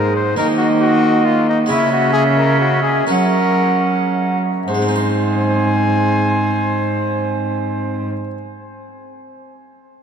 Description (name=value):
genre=classical, renaissance-style consort dance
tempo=70-92 BPM (dotted quarters)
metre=6/8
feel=straight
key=Ab mixolydian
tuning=A4 = 440 Hz
part: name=mellow cornet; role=melody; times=0.0-8.1 s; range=Eb4 to Ab5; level=-21 LUFS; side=left 3 dB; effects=none
part: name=alto recorder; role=second line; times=0.0-8.1 s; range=C5 to Gb5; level=-22 LUFS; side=right 3 dB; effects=none
part: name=harpsichord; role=accompaniment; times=0.0-8.4 s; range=Ab2 to C5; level=-26 LUFS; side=equal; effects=none
part: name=rich viola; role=accompaniment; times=0.0-8.1 s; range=Ab3 to Db4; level=-21 LUFS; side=left 1 dB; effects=none
part: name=rich cello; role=bass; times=0.0-8.1 s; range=Ab2 to Gb3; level=-19 LUFS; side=right 2 dB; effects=none
room=wet cathedral reverb, RT60 7.2 s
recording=in a vast, echoing space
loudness=-14 LUFS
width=side -7 dB against mid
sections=0.0-4.7 A section; 4.7-8.1 B section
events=slowing down 1.0-4.7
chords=0.4 Ebm; 1.7 Dbm; 3.1 Gb; 4.7 Ab